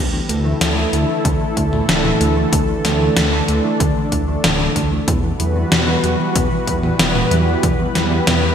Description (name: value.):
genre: synthwave.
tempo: 94 BPM.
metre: 4/4.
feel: straight.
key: D major.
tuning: A4 = 440 Hz.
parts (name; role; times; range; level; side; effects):
lush unison pad; sustained chords; 0.0-8.5 s; D3 to B4; -20 LUFS; equal; chorus, sidechain pumping.
thumb-piano-like synth pluck; arpeggios; 0.0-8.5 s; B2 to A3; -25 LUFS; right 3 dB; chorus, ping-pong delay.
mellow electric guitar; riff; 0.0-8.5 s; D3 to B3; -26 LUFS; right 2 dB; none.
dark detuned saw bass; bass; 0.0-8.5 s; D1 to E2; -21 LUFS; equal; none.
gated 80s digital drum machine; drums; 0.3-8.4 s; hi-hat, snare drum, toms; -19 LUFS; left 1 dB; gated reverb, gated reverb snare, overdrive.
electronic kick drum; drums; 1.2-7.8 s; none; -21 LUFS; equal; none.
room: moderate lush hall reverb, RT60 2.2 s.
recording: bright 1980s-style digital production.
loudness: -14 LUFS.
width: side -8 dB against mid.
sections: 0.0-8.5 A section.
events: none.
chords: 0.0 Dsus2; 5.1 Emadd9.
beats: 0.61 1.25 1.89 | 2.53 3.17 3.80 4.44 | 5.08 5.72 6.36 7.00 | 7.63 8.27.